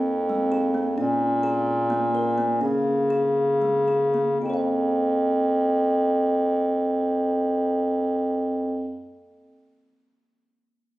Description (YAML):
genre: contemporary instrumental, chamber music in an uneven meter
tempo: 218-263 BPM (eighths)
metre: 7/8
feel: straight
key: F minor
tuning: A4 = 441 Hz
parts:
  - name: kalimba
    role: arpeggios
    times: 0.0-9.2 s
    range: Ab3 to F5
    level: -29 LUFS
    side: equal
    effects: none
  - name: clear bass clarinet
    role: bass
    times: 0.0-9.0 s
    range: F2 to Db3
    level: -21 LUFS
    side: equal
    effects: none
room: moderate recital hall reverb, RT60 1.7 s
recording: recorded on a phone in the room, club reverb, compression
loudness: -21 LUFS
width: side -17 dB against mid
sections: 0.0-4.4 A section; 4.4-8.3 B section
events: slowing down 1.0-4.4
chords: 0.0 Fm; 1.0 Bbm7; 2.6 Db5; 4.4 Fm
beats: 0.06 0.29 0.52 0.74 | 0.97 1.20 1.43 1.66 1.89 2.13 2.37 | 2.61 2.85 3.10 3.35 3.60 3.87 4.13 | 4.41 4.68 4.96 5.23 5.51 5.78 6.06 | 6.33 6.61 6.89 7.16 7.44 7.71 7.99